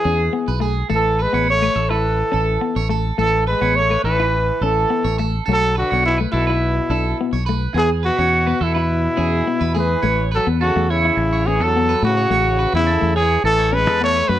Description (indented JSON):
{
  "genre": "highlife",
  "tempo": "105 BPM",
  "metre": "4/4",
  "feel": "straight",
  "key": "A major",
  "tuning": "A4 = 441 Hz",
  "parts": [
    { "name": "clear trumpet", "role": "melody", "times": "0.0-14.4 s", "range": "E4 to C#5", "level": "-19 LUFS", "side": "right 1 dB", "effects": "none" },
    { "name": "bright trombone", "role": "second line", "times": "0.0-14.4 s", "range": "B2 to A3", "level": "-27 LUFS", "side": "left 8 dB", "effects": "none" },
    { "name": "electric guitar at the edge of break-up", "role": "arpeggios", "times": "0.0-14.4 s", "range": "G#4 to C#5", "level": "-24 LUFS", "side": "right 6 dB", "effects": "phaser" },
    { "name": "semi-hollow electric guitar", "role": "accompaniment", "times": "0.1-14.4 s", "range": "A3 to E4", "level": "-26 LUFS", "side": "left 7 dB", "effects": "none" },
    { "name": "fingered electric bass", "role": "bass", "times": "0.1-14.4 s", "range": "A1 to A2", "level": "-20 LUFS", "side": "equal", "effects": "none" }
  ],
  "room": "moderate studio reverb, RT60 0.7 s",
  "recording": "nothing above 10.9 kHz",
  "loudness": "-16 LUFS",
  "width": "side -12 dB against mid",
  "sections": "0.0-10.0 A section; 10.0-14.4 B section",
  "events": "none",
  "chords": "0.0 E; 0.9 A; 5.5 B7(no3); 7.8 E; 10.0 A"
}